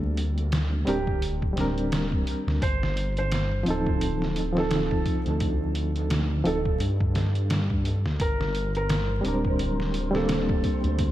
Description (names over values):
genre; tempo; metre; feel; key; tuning
trip hop; 86 BPM; 4/4; swing 58% on 16ths; unclear; A4 = 440 Hz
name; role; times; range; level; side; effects
reed electric piano; accompaniment; 0.0-11.1 s; F3 to Bb4; -28 LUFS; equal; tremolo, tape echo
dark detuned saw bass; bass; 0.0-11.1 s; D1 to G2; -27 LUFS; equal; none
trip hop sampler-style drum kit; drums; 0.2-11.1 s; hi-hat, kick drum, snare drum; -28 LUFS; equal; none
felt-muted upright piano; melody; 0.9-10.8 s; G4 to C5; -33 LUFS; right 2 dB; tape echo
flickering grainy texture; texture; 8.7-11.1 s; C5; -38 LUFS; right 3 dB; built-in reverb
room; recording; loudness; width
moderate church reverb, RT60 2.6 s; dreamy mix soaked in reverb, vinyl crackle; -23 LUFS; side -14 dB against mid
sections
0.0-11.1 A section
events
none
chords
0.0 Bb69; 2.6 F7; 8.2 Bb69